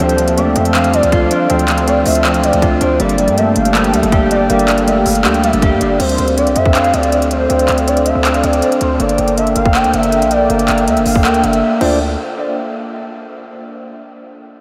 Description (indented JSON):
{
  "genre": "hip hop, trap",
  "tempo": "160 BPM",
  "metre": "4/4",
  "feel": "half-time",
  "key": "D minor",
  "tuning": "A4 = 437 Hz",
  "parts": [
    { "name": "gliding portamento lead", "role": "second line", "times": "0.0-12.0 s", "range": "C5 to G5", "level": "-19 LUFS", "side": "equal", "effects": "chorus, delay" },
    { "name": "mellow electric guitar", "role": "accompaniment", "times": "0.0-6.0 s", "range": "F3 to G4", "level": "-22 LUFS", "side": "equal", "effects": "analog chorus, low-pass filter" },
    { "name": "dark analog pad", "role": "sustained chords", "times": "0.0-12.0 s", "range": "D4 to G5", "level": "-23 LUFS", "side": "equal", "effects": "chorus" },
    { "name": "tine electric piano", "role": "arpeggios", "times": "0.0-12.0 s", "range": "Bb3 to C5", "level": "-20 LUFS", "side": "equal", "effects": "low-pass filter, delay" },
    { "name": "distorted 808-style bass", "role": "bass", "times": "0.0-12.2 s", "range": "G1 to G2", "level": "-22 LUFS", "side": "equal", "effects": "distortion" },
    { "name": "trap drum kit", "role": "drums", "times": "0.0-11.9 s", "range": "crash cymbal, handclaps, hi-hat, kick drum", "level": "-22 LUFS", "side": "equal", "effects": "none" }
  ],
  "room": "wet huge ambient reverb, RT60 7.7 s",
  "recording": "dreamy mix soaked in reverb",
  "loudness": "-13 LUFS",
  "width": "mono",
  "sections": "0.0-6.0 A section; 6.0-12.0 B section; 12.0-13.5 C section",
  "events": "drums muted 11.6-12.0",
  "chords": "0.0 Dm7; 3.0 Gmadd9; 6.0 Dm7; 9.0 Gmadd9; 11.8 Dm7; 12.0 N.C.",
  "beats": "| 0.00 0.37 0.75 1.12 | 1.50 1.87 2.25 2.62 | 3.00 3.37 3.75 4.12 | 4.50 4.87 5.25 5.62 | 6.00 6.37 6.75 7.12 | 7.50 7.87 8.25 8.62 | 9.00 9.37 9.75 10.12 | 10.50 10.87 11.25 11.62 | 12.00"
}